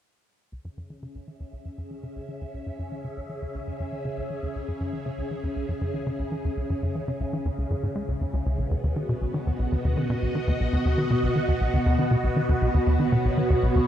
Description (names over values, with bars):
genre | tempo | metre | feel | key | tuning
ambient, sequencer-driven space music | 119 BPM | 4/4 | straight | C# minor | A4 = 440 Hz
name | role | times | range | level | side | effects
phased string machine | sustained chords | 0.5-13.9 s | B2 to E5 | -28 LUFS | equal | ensemble chorus, phaser
tight sequencer bass | riff | 0.5-13.8 s | B1 to G#3 | -26 LUFS | equal | tape echo
room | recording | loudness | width
wet huge ambient reverb, RT60 9.1 s | cassette tape | -24 LUFS | side -10 dB against mid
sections
0.5-13.9 A section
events
fade-in on analog synth bass 0.5-13.9; fade-in on string machine 0.5-13.9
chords
0.5 C#m; 8.6 B